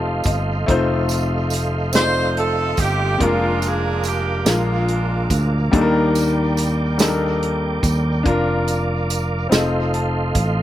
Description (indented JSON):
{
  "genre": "slow gospel",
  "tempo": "48 BPM (dotted quarters)",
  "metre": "6/8",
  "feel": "straight",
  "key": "Bb major",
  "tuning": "A4 = 439 Hz",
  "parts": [
    { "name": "clear baby grand piano", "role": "accompaniment", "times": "0.0-10.6 s", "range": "Bb2 to A5", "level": "-22 LUFS", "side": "left 3 dB", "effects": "slapback echo" },
    { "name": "tonewheel organ", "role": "sustained chords", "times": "0.0-10.6 s", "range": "A4 to D6", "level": "-26 LUFS", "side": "right 3 dB", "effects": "chorus vibrato, stopped rotary speaker" },
    { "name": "fingered electric bass", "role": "bass", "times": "0.0-10.6 s", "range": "F1 to Eb2", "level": "-21 LUFS", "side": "right 1 dB", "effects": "none" },
    { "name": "tambourine", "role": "percussion", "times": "0.2-10.6 s", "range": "none", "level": "-31 LUFS", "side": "right 8 dB", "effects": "none" },
    { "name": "warm soul drum kit", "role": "drums", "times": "0.3-10.6 s", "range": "hi-hat, kick drum, snare drum", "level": "-20 LUFS", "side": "right 1 dB", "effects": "none" },
    { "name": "edgy saxophone section", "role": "melody", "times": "2.0-5.7 s", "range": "Ab3 to C5", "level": "-22 LUFS", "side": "right 2 dB", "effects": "slapback echo" }
  ],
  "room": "little or no reverb",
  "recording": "none",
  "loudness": "-17 LUFS",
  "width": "side -13 dB against mid",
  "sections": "0.0-10.6 A section",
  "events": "grand piano fill 0.0-0.7, 9.5-10.6",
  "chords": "0.0 F7; 3.2 Bb7/F; 4.5 Bb7; 5.7 Ebmaj7; 8.3 Bb/F; 9.5 F7"
}